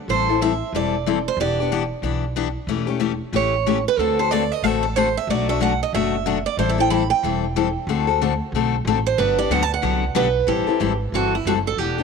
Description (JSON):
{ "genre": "acoustic string swing (jazz manouche)", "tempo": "185 BPM", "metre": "4/4", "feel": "swing 61% on 8ths", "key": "unclear", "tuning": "A4 = 440 Hz", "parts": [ { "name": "picked steel-string acoustic guitar", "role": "melody", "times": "0.1-12.0 s", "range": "E4 to B5", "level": "-22 LUFS", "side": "right 11 dB", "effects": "none" }, { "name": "picked steel-string acoustic guitar", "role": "accompaniment", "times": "0.1-12.0 s", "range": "B2 to A4", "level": "-22 LUFS", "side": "left 12 dB", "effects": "none" }, { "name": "upright bass", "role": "bass", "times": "0.1-12.0 s", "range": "E1 to D2", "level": "-26 LUFS", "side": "right 1 dB", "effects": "none" } ], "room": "light reverb, small room ambience", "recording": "1960s-style stereo with parts hard left and right", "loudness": "-18 LUFS", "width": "side -5 dB against mid", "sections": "0.1-10.5 A section; 10.5-12.0 B section", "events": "steel-string acoustic guitar solo 0.0-10.5", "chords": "0.1 Am7; 1.4 Em7; 2.7 A7/E; 4.0 D7; 5.3 Bm7; 6.6 Am7; 7.9 D7; 9.2 Gmaj7; 10.5 Am7", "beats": "| 0.08 0.40 0.73 1.05 | 1.38 1.71 2.03 2.36 | 2.68 3.01 3.33 3.66 | 3.98 4.31 4.63 4.96 | 5.29 5.61 5.93 6.26 | 6.58 6.91 7.24 7.56 | 7.88 8.21 8.53 8.86 | 9.18 9.51 9.83 10.16 | 10.48 10.81 11.13 11.46 | 11.78" }